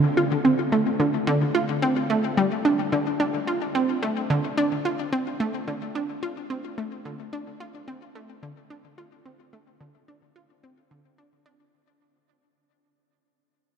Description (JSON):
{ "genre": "ambient", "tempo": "109 BPM", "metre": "4/4", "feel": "straight", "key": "D minor", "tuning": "A4 = 437 Hz", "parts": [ { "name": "analog pluck", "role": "solo", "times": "0.0-11.6 s", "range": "D3 to F4", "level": "-22 LUFS", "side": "right 1 dB", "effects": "chorus, ping-pong delay" } ], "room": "wet huge ambient reverb, RT60 8.0 s", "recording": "none", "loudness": "-22 LUFS", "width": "side -7 dB against mid", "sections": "0.0-11.7 A section", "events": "fade-out 0.0-11.7", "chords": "none" }